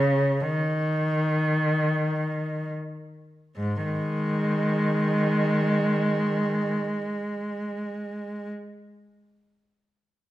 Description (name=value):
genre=classical, free, expressive piece for unaccompanied cello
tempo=free time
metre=none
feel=none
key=unclear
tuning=A4 = 441 Hz
part: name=rich cello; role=solo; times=0.0-8.5 s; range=G#2 to G#3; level=-24 LUFS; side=equal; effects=none
room=moderate recital hall reverb, RT60 1.4 s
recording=none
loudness=-23 LUFS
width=side -14 dB against mid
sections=0.0-3.6 A section; 3.6-8.0 B section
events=slowing down 0.0-3.6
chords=none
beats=free time